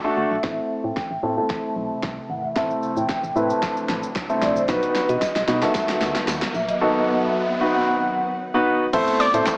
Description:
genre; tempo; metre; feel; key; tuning
dance-pop; 113 BPM; 4/4; straight; unclear; A4 = 439 Hz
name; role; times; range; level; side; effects
warm grand piano; accompaniment; 0.0-9.5 s; D#3 to C5; -22 LUFS; equal; sidechain pumping, low-pass filter, cassette tape
vibraphone with medium mallets; melody; 0.2-8.2 s; B4 to A5; -25 LUFS; equal; low-pass filter, cassette tape, analog delay
organ-like FM bass; bass; 0.2-9.4 s; G#1 to B2; -29 LUFS; equal; sidechain pumping
ethereal airy pad; sustained chords; 1.2-9.6 s; C3 to F#4; -32 LUFS; equal; ensemble chorus, built-in reverb, phaser, sidechain pumping, low-pass filter, cassette tape
pop drum kit; drums; 0.4-9.6 s; crash cymbal, handclaps, hi-hat, kick drum, shaker, snare drum; -27 LUFS; equal; none
riser; sound effects; 2.4-7.9 s; none; -33 LUFS; equal; none
tambourine; percussion; 4.7-9.6 s; none; -40 LUFS; right 1 dB; none
analog pluck; melody; 9.2-9.3 s; D5; -19 LUFS; equal; chorus, sidechain pumping, cassette tape
room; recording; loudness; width
moderate lush hall reverb, RT60 2.0 s; home recording on cassette, small speaker sound; -19 LUFS; side -30 dB against mid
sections
0.4-8.9 A section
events
build-up 0.4-8.9; drum fill 0.4-6.8; filter sweep 0.4-8.9; riser 2.4-8.9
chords
0.4 Am; 4.7 B; 8.9 Am

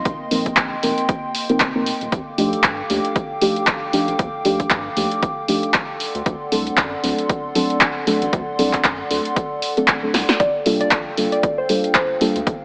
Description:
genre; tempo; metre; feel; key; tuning
deep house; 116 BPM; 4/4; swing 57% on 16ths; unclear; A4 = 439 Hz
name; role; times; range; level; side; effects
dark analog pad; sustained chords; 0.0-12.6 s; Bb3 to D6; -28 LUFS; equal; chorus, vintage 12-bit sampler grit, sidechain pumping
round analog bass; bass; 0.1-12.6 s; Eb1 to G2; -34 LUFS; equal; tube saturation, sidechain pumping
electronic kick drum; drums; 0.1-12.6 s; none; -26 LUFS; equal; overdrive
punchy analog drum machine; drums; 0.1-12.6 s; handclaps, hi-hat, snare drum; -23 LUFS; equal; overdrive
deep mellow chord stab; stabs; 0.3-12.4 s; F3 to Bb4; -24 LUFS; equal; chorus, sidechain pumping, digital delay
soft round pluck; melody; 10.4-12.2 s; C5 to D5; -24 LUFS; equal; subtle chorus, dub echo
room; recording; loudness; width
moderate lush hall reverb, RT60 1.9 s, digital ambience; AM radio sound; -20 LUFS; mono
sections
0.0-12.6 A section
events
drum fill 10.1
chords
0.0 F7sus4; 2.1 Ebmaj9#11; 6.0 D7; 10.4 Gm9

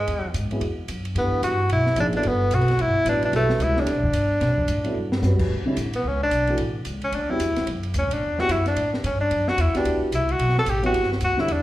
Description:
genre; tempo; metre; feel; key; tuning
modal jazz; 221 BPM; 4/4; swing 61% on 8ths; D major from 5.5 s; A4 = 440 Hz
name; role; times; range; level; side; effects
warm tenor saxophone; melody; 0.0-11.6 s; G#3 to A4; -23 LUFS; equal; slapback echo
upright bass; bass; 0.0-11.6 s; G1 to B2; -25 LUFS; equal; none
open jazz drum kit; drums; 0.1-11.6 s; crash cymbal, hi-hat, kick drum, ride cymbal, snare drum; -32 LUFS; equal; none
dark upright piano; accompaniment; 0.5-11.5 s; D3 to C#5; -27 LUFS; equal; slapback echo
room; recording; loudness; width
light reverb, studio reverb; live gig heard through the venue's PA, club reverb; -20 LUFS; side -15 dB against mid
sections
0.0-5.5 A section; 5.5-11.6 B section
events
drum fill 5.0; tenor saxophone solo 5.5-11.6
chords
0.0 Eadd9; 1.2 Gmaj9; 5.5 Dmaj9; 9.8 Gmaj9

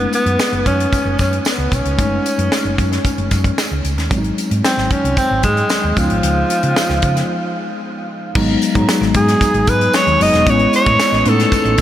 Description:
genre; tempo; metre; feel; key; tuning
polished 1980s jazz-funk pop; 113 BPM; 4/4; straight; F# dorian; A4 = 441 Hz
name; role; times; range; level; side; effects
breathy alto saxophone; melody; 0.0-11.8 s; E#3 to D#5; -17 LUFS; equal; none
mellow tine electric piano; accompaniment; 0.0-11.8 s; E#3 to E4; -20 LUFS; left 2 dB; slow stereo tremolo, analog chorus
hollow-body short-scale fingered electric bass; bass; 0.0-11.8 s; E1 to C#3; -19 LUFS; equal; none
tight funk drum kit; drums; 0.1-11.8 s; crash cymbal, hi-hat, kick drum, snare drum; -20 LUFS; equal; none
tambourine; percussion; 0.1-11.8 s; none; -32 LUFS; right 5 dB; none
room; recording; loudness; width
moderate huge ambient reverb, RT60 8.9 s; dreamy mix soaked in reverb; -13 LUFS; side -12 dB against mid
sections
0.0-8.4 A section; 8.4-11.8 B section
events
break 7.3-8.4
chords
0.0 F#m69; 4.1 G#7; 6.0 C#7; 8.4 G#m7; 10.5 Amaj7

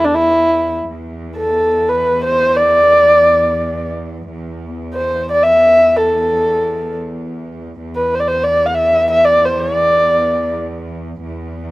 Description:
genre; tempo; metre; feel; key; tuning
Persian modal ensemble; free time; none; none; E dastgah shur; A4 = 441 Hz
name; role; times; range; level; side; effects
dark kamancheh; melody; 0.0-10.6 s; D4 to F5+42c; -12 LUFS; equal; none
rich studio cello section; drone; 0.0-11.7 s; E2; -25 LUFS; right 1 dB; none
room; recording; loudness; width
little or no reverb; recorded outdoors, with no room sound; -11 LUFS; side -19 dB against mid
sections
0.9-11.7 A section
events
none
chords
none

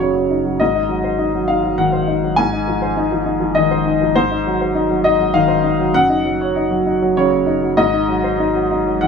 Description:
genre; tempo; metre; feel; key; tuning
neoclassical piano and strings; 100 BPM; 3/4; rubato; unclear; A4 = 440 Hz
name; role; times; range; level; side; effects
warm upright piano; accompaniment; 0.0-9.1 s; Gb2 to Ab5; -14 LUFS; left 1 dB; none
punchy sub bass; bass; 0.0-9.1 s; Gb1 to Ab1; -29 LUFS; left 1 dB; none
room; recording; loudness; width
light reverb; none; -14 LUFS; side -6 dB against mid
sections
0.0-9.1 A section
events
none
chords
0.0 Ebm7/Gb; 0.6 Ab7; 2.4 Fm7/Ab; 4.2 Ab7; 5.9 Ebm7/Gb; 7.8 Ab7

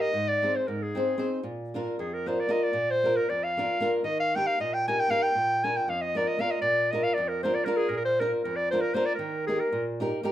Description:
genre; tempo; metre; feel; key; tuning
balkan folk; 233 BPM (eighths); 5/8; straight; Bb mixolydian; A4 = 440 Hz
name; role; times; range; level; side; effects
clear clarinet; melody; 0.0-9.9 s; Ab4 to Ab5; -26 LUFS; equal; plate reverb
flamenco guitar; accompaniment; 0.0-10.3 s; F2 to C5; -29 LUFS; equal; none
room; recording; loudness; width
moderate small room reverb, RT60 0.6 s; none; -24 LUFS; side -12 dB against mid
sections
0.0-10.3 A section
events
speeding up 0.0-10.3; clarinet solo 0.0-10.3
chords
0.1 Ab; 1.4 Bb; 4.0 Eb; 5.3 Bb; 9.2 Eb

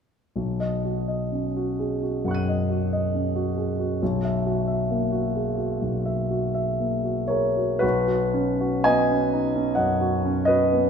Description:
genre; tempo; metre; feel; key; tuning
classical, impressionist solo piano; 55-69 BPM; 4/4; rubato; B major; A4 = 440 Hz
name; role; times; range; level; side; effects
warm concert grand piano; solo; 0.4-10.9 s; B1 to D#7; -22 LUFS; equal; none
room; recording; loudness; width
wet scoring stage reverb, RT60 1.7 s; minimal, uncompressed stereo recording; -22 LUFS; side -6 dB against mid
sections
0.4-7.8 A section; 7.8-10.9 B section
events
none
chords
0.4 Badd9; 4.0 F#9/B; 7.8 Badd9

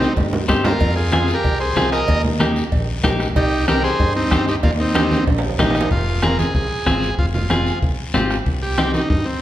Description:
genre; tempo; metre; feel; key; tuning
latin, cumbia; 188 BPM; 4/4; straight; F minor; A4 = 439 Hz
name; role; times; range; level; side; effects
overdriven combo organ; melody; 0.0-9.4 s; Bb3 to Eb5; -22 LUFS; equal; none
clean electric guitar; accompaniment; 0.0-9.0 s; Bb3 to Ab4; -22 LUFS; left 2 dB; none
fingered electric bass; bass; 0.0-9.2 s; F1 to G2; -22 LUFS; equal; none
congas; percussion; 0.0-9.1 s; none; -25 LUFS; right 1 dB; none
guiro; percussion; 0.0-9.4 s; none; -34 LUFS; left 4 dB; none
bombo; percussion; 0.2-9.3 s; none; -23 LUFS; equal; none
cowbell and timbales; percussion; 0.2-5.9 s; none; -28 LUFS; right 4 dB; none
room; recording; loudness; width
wet recital hall reverb, RT60 1.6 s; recorded in a church or concert hall; -16 LUFS; side -13 dB against mid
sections
0.0-5.9 A section; 5.9-9.4 B section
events
drum fill 0.0-0.8, 5.0-5.9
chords
0.0 Cm; 0.8 Fm; 2.1 Eb; 3.4 Cm; 4.6 Eb; 5.9 Fm; 8.5 Cm

